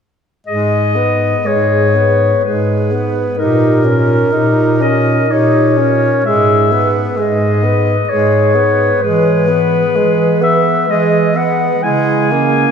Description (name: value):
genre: classical, lyrical piece for single-reed quartet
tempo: 63 BPM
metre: 3/4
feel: uneven beats, rubato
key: G# minor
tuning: A4 = 440 Hz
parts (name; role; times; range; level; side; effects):
- mellow clarinet; melody; 0.5-12.7 s; A#4 to G#5; -15 LUFS; left 4 dB; none
- warm clarinet; second line; 0.5-12.7 s; C#4 to B4; -19 LUFS; right 6 dB; none
- clear tenor saxophone; accompaniment; 0.5-12.7 s; G#3 to D#4; -18 LUFS; equal; none
- dark bass clarinet; bass; 0.5-12.7 s; G#2 to E3; -16 LUFS; equal; none
room: wet church reverb, RT60 3.5 s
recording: recorded in a church or concert hall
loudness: -11 LUFS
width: side -7 dB against mid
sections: 0.5-12.7 A section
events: none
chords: 0.5 G#m; 3.4 D#7/A#; 6.3 G#m; 9.0 E; 11.8 A#m7b5/C#